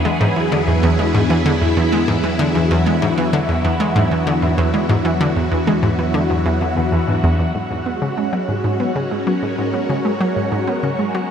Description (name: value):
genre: ambient, sequencer-driven space music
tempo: 96 BPM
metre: 4/4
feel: straight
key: G# minor from 7.6 s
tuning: A4 = 439 Hz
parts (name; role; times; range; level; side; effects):
- phased string machine; sustained chords; 0.0-11.3 s; F#3 to A#4; -20 LUFS; equal; ensemble chorus, phaser
- concert harp; arpeggios; 0.0-11.3 s; E3 to G#4; -24 LUFS; left 4 dB; auto-pan, analog delay
- analog pluck; riff; 0.0-11.2 s; E2 to B3; -18 LUFS; right 1 dB; chorus, analog delay
- analog drone; bass; 0.1-7.5 s; E2; -25 LUFS; equal; chorus, phaser
- wind-like tuned noise texture; texture; 10.6-11.3 s; none; barely audible; none; none
room: moderate shimmer reverb, RT60 8.1 s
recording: none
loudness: -15 LUFS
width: side -8 dB against mid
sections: 0.0-7.6 A section; 7.6-11.3 B section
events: none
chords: 0.0 E7; 7.6 G#m7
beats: | 0.05 0.68 1.30 1.93 | 2.55 3.18 3.80 4.43 | 5.05 5.68 6.30 6.93 | 7.55 8.18 8.80 9.43 | 10.05 10.68 11.30